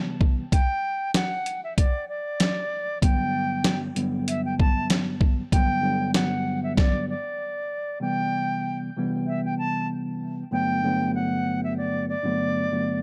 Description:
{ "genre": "hip hop, boom-bap hip-hop", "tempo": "96 BPM", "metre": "4/4", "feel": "swing 56% on 16ths", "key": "unclear", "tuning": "A4 = 440 Hz", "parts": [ { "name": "mellow tine electric piano", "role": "accompaniment", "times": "0.0-13.0 s", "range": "G2 to B3", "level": "-29 LUFS", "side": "equal", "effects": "cassette tape, high-pass filter, low-pass filter" }, { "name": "boom bap sampler-style drum kit", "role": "drums", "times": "0.2-6.9 s", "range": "hi-hat, kick drum, snare drum", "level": "-24 LUFS", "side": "equal", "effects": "none" }, { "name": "bright reedy silver concert flute", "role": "melody", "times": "0.5-13.0 s", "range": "D5 to A5", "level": "-31 LUFS", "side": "equal", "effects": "high-pass filter, low-pass filter, analog delay" } ], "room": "small room reverb", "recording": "dry, gritty hardware recording", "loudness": "-25 LUFS", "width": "mono", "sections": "0.0-8.0 A section; 8.0-13.0 B section", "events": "stop 6.8-8.0", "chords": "0.0 Cmaj7; 0.5 N.C.; 3.0 Gmaj7; 8.0 Cmaj7; 10.5 Gmaj7", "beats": "| 0.53 1.15 1.77 2.40 | 3.02 3.65 4.28 4.90 | 5.53 6.15 6.78 7.40 | 8.03 8.65 9.28 9.90 | 10.53 11.15 11.78 12.40" }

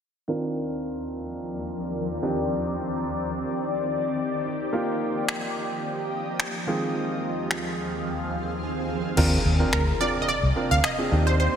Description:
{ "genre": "dance-pop", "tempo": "108 BPM", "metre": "4/4", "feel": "straight", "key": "unclear", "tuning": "A4 = 440 Hz", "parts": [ { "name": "warm concert grand piano", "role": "accompaniment", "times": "0.3-11.6 s", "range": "Eb3 to Bb4", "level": "-29 LUFS", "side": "right 1 dB", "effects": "low-pass filter" }, { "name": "shimmering ambient pad", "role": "sustained chords", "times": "1.0-11.6 s", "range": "Eb2 to F5", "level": "-29 LUFS", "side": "left 1 dB", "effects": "chorus, built-in reverb, phaser, low-pass filter" }, { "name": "smooth R&B drum kit", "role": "drums", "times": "5.3-11.0 s", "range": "crash cymbal, finger snaps", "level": "-30 LUFS", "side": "left 1 dB", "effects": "overdrive" }, { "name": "vintage muted fingered electric bass", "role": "bass", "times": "9.2-11.5 s", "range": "C2 to Eb2", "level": "-21 LUFS", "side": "equal", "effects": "none" }, { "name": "impact", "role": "sound effects", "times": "9.2-11.4 s", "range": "none", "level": "-33 LUFS", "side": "equal", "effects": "none" }, { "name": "wide unison pluck", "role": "melody", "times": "9.7-11.6 s", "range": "Bb4 to F5", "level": "-25 LUFS", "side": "right 1 dB", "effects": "phaser, tape echo" } ], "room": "wet lush hall reverb, RT60 2.9 s", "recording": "big arena sound", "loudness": "-24 LUFS", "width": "side -8 dB against mid", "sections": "0.3-9.2 A section; 9.2-11.6 B section", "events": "filter sweep 0.3-9.2; impact 9.2-11.4", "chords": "0.3 Bbadd9/Eb; 2.2 Cmadd9/Eb; 4.7 Ebadd9; 6.7 Fm/Eb; 9.2 Bbadd9", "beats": "| 0.28 0.84 1.40 1.95 | 2.51 3.06 3.62 4.17 | 4.73 5.28 5.84 6.39 | 6.95 7.51 8.06 8.62 | 9.17 9.73 10.28 10.84 | 11.39" }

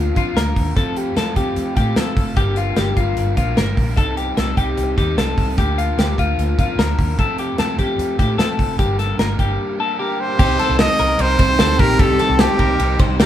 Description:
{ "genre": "jangly indie pop", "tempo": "150 BPM", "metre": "4/4", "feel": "straight", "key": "C dorian", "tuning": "A4 = 441 Hz", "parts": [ { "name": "overdriven electric guitar", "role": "accompaniment", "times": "0.0-13.3 s", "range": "F2 to F4", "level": "-25 LUFS", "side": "right 4 dB", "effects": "none" }, { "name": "twelve-string electric guitar", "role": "arpeggios", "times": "0.0-13.3 s", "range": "F4 to C5", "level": "-22 LUFS", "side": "left 5 dB", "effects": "none" }, { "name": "vintage muted fingered electric bass", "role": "bass", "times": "0.0-13.3 s", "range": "F1 to A2", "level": "-22 LUFS", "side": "equal", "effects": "none" }, { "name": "modern studio drum kit", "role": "drums", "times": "0.2-13.3 s", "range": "crash cymbal, hi-hat, kick drum, ride cymbal, snare drum", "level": "-19 LUFS", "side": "equal", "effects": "none" }, { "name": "brilliant trumpet", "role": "melody", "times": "10.0-13.3 s", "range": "G4 to Eb5", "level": "-19 LUFS", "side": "right 2 dB", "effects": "none" }, { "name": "warm studio string section", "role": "sustained chords", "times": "10.4-13.3 s", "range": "Eb3 to G4", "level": "-26 LUFS", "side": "equal", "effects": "none" } ], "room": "wet small room reverb, RT60 0.5 s", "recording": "band playing live in one room", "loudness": "-15 LUFS", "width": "side -11 dB against mid", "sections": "0.0-10.4 A section; 10.4-13.3 B section", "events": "none", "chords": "0.0 Bb/D; 0.8 F; 2.4 Gm; 4.0 Cm; 5.6 Bb/D; 7.2 F; 8.8 Gm; 10.4 Cm", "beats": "0.36 | 0.77 1.17 1.57 1.97 | 2.37 2.77 3.17 3.57 | 3.97 4.38 4.78 5.18 | 5.58 5.98 6.38 6.78 | 7.18 7.59 7.99 8.39 | 8.79 9.19 9.60 10.00 | 10.40 10.80 11.20 11.60 | 12.00 12.40 12.80 13.20" }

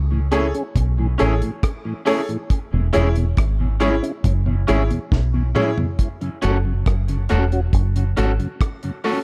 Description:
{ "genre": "roots reggae", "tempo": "69 BPM", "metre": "4/4", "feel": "straight", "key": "F# minor", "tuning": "A4 = 440 Hz", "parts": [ { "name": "deep dub fingered electric bass", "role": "bass", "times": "0.0-8.4 s", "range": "E1 to C#2", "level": "-21 LUFS", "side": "equal", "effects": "none" }, { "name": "mellow tonewheel organ", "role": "accompaniment", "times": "0.1-9.1 s", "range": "E2 to G#4", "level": "-29 LUFS", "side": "equal", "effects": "chorus vibrato, stopped rotary speaker, tape echo" }, { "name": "electric guitar at the edge of break-up", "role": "accompaniment", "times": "0.3-9.2 s", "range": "C#4 to A4", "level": "-29 LUFS", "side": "equal", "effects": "harmonic tremolo, dub echo" }, { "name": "bright upright piano", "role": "stabs", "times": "0.3-5.7 s", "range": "E4 to C#5", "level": "-26 LUFS", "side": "equal", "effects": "none" }, { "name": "deep reggae drum kit", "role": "drums", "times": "0.3-9.2 s", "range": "hi-hat, kick drum, rim click, snare drum, toms", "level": "-23 LUFS", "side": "equal", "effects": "none" } ], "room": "small room ambience", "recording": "echo-heavy mix", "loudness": "-20 LUFS", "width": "mono", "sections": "0.0-6.0 A section; 6.0-9.2 B section", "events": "drum fill 5.1-6.0", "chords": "0.0 Amaj7; 2.5 E6; 6.0 F#m", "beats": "0.76 1.64 | 2.51 3.38 4.25 5.12 | 5.99 6.86 7.73 8.60" }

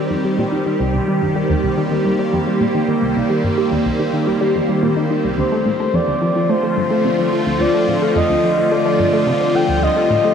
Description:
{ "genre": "ambient, sequencer-driven space music", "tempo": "108 BPM", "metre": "4/4", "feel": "straight", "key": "C dorian", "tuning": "A4 = 437 Hz", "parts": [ { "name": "evolving wavetable pad", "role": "sustained chords", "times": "0.0-10.3 s", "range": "D3 to G4", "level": "-18 LUFS", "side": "equal", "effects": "phaser, built-in reverb" }, { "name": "tight sequenced synth", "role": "riff", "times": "0.0-10.3 s", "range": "C2 to A3", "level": "-20 LUFS", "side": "equal", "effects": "chorus, phaser, cassette tape, tape echo" }, { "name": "bubbling stepped-filter texture", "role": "texture", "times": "0.0-10.3 s", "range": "C4 to C5", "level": "-28 LUFS", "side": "left 3 dB", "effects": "chorus, built-in reverb" }, { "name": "breathy flute-like synth lead", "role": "melody", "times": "5.4-10.3 s", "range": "C5 to G5", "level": "-18 LUFS", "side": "equal", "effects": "wide subtle chorus, tape echo" } ], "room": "wet plate reverb, RT60 2.6 s", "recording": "dreamy mix soaked in reverb", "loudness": "-15 LUFS", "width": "side -7 dB against mid", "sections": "0.0-10.3 A section", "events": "none", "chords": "0.0 Cm; 5.4 Dm", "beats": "0.38 | 0.94 1.49 2.05 2.60 | 3.16 3.72 4.27 4.83 | 5.38 5.94 6.49 7.05 | 7.61 8.16 8.72 9.27 | 9.83" }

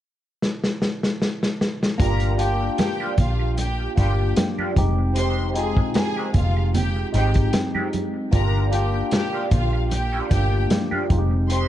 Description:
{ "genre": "lush 1970s-style soul", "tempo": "76 BPM", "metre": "4/4", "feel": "swing 54% on 16ths", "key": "unclear", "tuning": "A4 = 440 Hz", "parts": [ { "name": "vintage drum kit", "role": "drums", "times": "0.4-11.7 s", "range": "hi-hat, kick drum, snare drum", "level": "-23 LUFS", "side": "equal", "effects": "none" }, { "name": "warm symphonic string section", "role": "second line", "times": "2.0-11.7 s", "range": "F4 to C6", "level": "-30 LUFS", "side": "equal", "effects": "none" }, { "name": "barky tine electric piano", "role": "accompaniment", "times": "2.0-11.7 s", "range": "Ab3 to Ab4", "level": "-26 LUFS", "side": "left 1 dB", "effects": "phaser" }, { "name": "electric guitar through a small old amp", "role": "riff", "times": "2.0-11.7 s", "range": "Eb3 to G4", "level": "-32 LUFS", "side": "right 3 dB", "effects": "wah, phaser" }, { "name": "vintage muted fingered electric bass", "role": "bass", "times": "2.0-11.7 s", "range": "F1 to Bb1", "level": "-22 LUFS", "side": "equal", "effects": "none" }, { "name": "congas", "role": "percussion", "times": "2.8-11.3 s", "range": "none", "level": "-30 LUFS", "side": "right 4 dB", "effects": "none" } ], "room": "light reverb, small room ambience", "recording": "dark, warm production, nothing above 10.3 kHz", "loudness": "-19 LUFS", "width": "side -12 dB against mid", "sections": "0.0-2.0 A section; 2.0-11.7 B section", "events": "drum fill 0.4-2.0", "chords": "0.0 N.C.; 2.0 Gm7; 4.8 Fm9; 8.3 Gm7; 11.1 Fm9", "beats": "0.41 1.21 | 2.00 2.79 3.58 4.37 | 5.16 5.96 6.75 7.54 | 8.33 9.12 9.91 10.71 | 11.50" }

